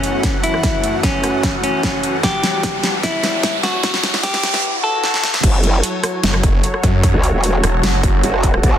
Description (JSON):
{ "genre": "heavy wobble dubstep", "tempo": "150 BPM", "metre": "4/4", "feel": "half-time", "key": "F# phrygian", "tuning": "A4 = 438 Hz", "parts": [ { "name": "clean electric guitar", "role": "melody", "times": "0.0-5.4 s", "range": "C#4 to A4", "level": "-21 LUFS", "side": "left 1 dB", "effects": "vintage 12-bit sampler grit, tape echo" }, { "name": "supersaw chords", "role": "sustained chords", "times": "0.0-8.8 s", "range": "E2 to F#5", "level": "-24 LUFS", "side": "left 1 dB", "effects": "sidechain pumping, low-pass filter" }, { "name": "dubstep drum kit", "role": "drums", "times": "0.0-8.7 s", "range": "crash cymbal, hi-hat, rim click, snare drum", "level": "-20 LUFS", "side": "equal", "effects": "small room ambience" }, { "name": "riser and swell", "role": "sound effects", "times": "0.4-5.4 s", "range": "none", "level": "-24 LUFS", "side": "equal", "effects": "none" }, { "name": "granular cloud pad", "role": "texture", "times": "0.0-8.8 s", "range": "E4 to A5", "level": "-26 LUFS", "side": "right 1 dB", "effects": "built-in reverb, sidechain pumping" }, { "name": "electronic kick drum", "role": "drums", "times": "0.2-8.7 s", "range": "none", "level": "-18 LUFS", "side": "equal", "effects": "overdrive, small room ambience" }, { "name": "growl bass", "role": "bass", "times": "5.4-8.8 s", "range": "E1 to C#2", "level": "-16 LUFS", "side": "equal", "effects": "chorus, overdrive" }, { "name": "snarling distorted saw bass", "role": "bass", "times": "6.2-8.2 s", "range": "E1 to F#2", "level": "-17 LUFS", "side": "equal", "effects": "distortion, overdrive" } ], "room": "light reverb, digital ambience", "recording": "dense, heavily limited modern master, high-pass filter", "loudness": "-14 LUFS", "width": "side -10 dB against mid", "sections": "0.0-5.4 A section; 5.4-8.8 B section", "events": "build-up 0.0-5.4; drum fill 0.0-4.6, 5.0-5.4; filter sweep 0.0-5.4; riser 0.4-4.6; swell 4.6-5.4; drop 5.4-8.8", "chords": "0.0 F#m7; 2.2 Emadd9; 5.4 F#m" }